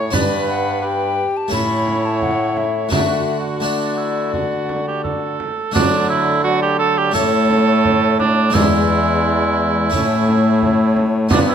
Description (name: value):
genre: classical, renaissance-style consort dance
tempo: 86 BPM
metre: 4/4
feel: straight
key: D major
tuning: A4 = 441 Hz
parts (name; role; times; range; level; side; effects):
- warm cor anglais; second line; 0.0-11.5 s; D4 to C#5; -20 LUFS; right 6 dB; none
- harpsichord; accompaniment; 0.0-11.5 s; E2 to D5; -23 LUFS; left 2 dB; none
- warm viola; accompaniment; 0.0-11.5 s; F#3 to C#5; -21 LUFS; left 1 dB; none
- brilliant trombone; bass; 0.0-11.5 s; E2 to D3; -23 LUFS; right 2 dB; none
- mellow hollow tenor recorder; melody; 0.1-11.5 s; C#5 to B5; -24 LUFS; left 8 dB; none
- frame drum; percussion; 0.1-11.5 s; none; -23 LUFS; right 3 dB; none
room: light reverb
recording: close, detailed microphones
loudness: -15 LUFS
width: side -8 dB against mid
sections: 0.0-5.8 A section; 5.8-11.5 A section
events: none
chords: 0.1 G; 1.5 A; 2.9 D; 7.2 A; 8.5 E7; 9.9 A